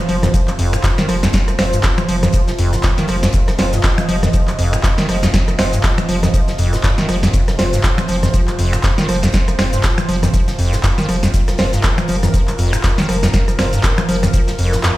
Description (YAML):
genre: acid house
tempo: 120 BPM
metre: 4/4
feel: swing 57% on 16ths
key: unclear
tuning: A4 = 441 Hz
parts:
  - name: warm analog pad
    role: sustained chords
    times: 0.0-15.0 s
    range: C3 to Eb5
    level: -23 LUFS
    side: equal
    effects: chorus, sidechain pumping
  - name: acid bass, square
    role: riff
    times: 0.1-14.9 s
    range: F2 to F3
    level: -19 LUFS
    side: equal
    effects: tube saturation, cassette tape, sidechain pumping
  - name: warm sub bass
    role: bass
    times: 0.1-14.8 s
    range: F1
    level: -21 LUFS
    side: equal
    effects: sidechain pumping
  - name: electro analog drum machine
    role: drums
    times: 0.1-15.0 s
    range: congas, finger snaps, handclaps, hi-hat, rim click, shaker, snare drum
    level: -20 LUFS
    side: equal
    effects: none
  - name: tight metal drum kit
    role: drums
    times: 0.1-15.0 s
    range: hi-hat, snare drum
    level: -32 LUFS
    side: left 2 dB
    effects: high-pass filter on hats, high-pass filter on snare, high-pass filter on room
  - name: electronic kick drum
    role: drums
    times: 0.3-14.5 s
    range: none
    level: -16 LUFS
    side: equal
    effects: none
  - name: warm grand piano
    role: stabs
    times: 1.6-13.7 s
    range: C4 to C5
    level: -26 LUFS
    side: right 1 dB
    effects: dub echo
room: moderate small room ambience, RT60 0.5 s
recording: played on a big sound system in a bare room, stone room reverb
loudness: -13 LUFS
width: side -16 dB against mid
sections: 0.0-15.0 A section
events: none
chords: 0.0 F5